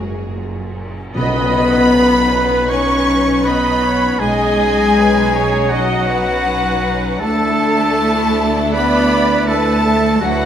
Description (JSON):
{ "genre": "cinematic, emotional film score for orchestra", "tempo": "80 BPM", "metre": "4/4", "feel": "rubato", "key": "B major", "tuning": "A4 = 440 Hz", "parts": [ { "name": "warm symphonic violin section", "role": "melody", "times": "0.0-10.5 s", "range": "C#5 to C#6", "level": "-23 LUFS", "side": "left 3 dB", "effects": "none" }, { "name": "rich symphonic violin section", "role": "second line", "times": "0.0-10.5 s", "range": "C#4 to A#4", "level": "-23 LUFS", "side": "left 1 dB", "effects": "none" }, { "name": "rich symphonic viola section", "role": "accompaniment", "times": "0.0-10.5 s", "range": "F#3 to D#5", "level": "-22 LUFS", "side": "right 2 dB", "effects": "none" }, { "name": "dark French horn section", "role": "sustained chords", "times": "0.0-10.5 s", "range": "F#3 to G#4", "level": "-20 LUFS", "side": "left 3 dB", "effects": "none" }, { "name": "clear symphonic cello section", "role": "bass", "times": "0.0-10.5 s", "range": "G#2 to C#4", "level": "-22 LUFS", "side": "equal", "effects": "none" }, { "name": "rich symphonic double bass section", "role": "bass", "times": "0.0-10.5 s", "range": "F#1 to D2", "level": "-23 LUFS", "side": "right 3 dB", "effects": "none" }, { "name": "hollow silver concert flute", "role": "second line", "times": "1.2-10.5 s", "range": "F#5 to C#6", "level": "-22 LUFS", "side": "left 1 dB", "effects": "none" }, { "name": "mellow clarinet", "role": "second line", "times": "1.2-10.5 s", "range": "F#4 to C#5", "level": "-23 LUFS", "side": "equal", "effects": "none" }, { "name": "warm oboe", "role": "second line", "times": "1.2-10.5 s", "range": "F#4 to C#5", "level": "-23 LUFS", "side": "right 2 dB", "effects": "none" }, { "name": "tam-tam", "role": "percussion", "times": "1.2-4.2 s", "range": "none", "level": "-29 LUFS", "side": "left 2 dB", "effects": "none" }, { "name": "timpani", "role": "percussion", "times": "1.2-2.3 s", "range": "B2", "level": "-26 LUFS", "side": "right 3 dB", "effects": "none" } ], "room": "wet scoring stage reverb, RT60 1.6 s", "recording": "none", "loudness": "-12 LUFS", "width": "side -9 dB against mid", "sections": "0.0-1.2 A section; 1.2-10.5 B section", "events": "band accent 1.2-1.9", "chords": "0.0 F#add9; 1.2 Badd9; 7.2 Dsus2" }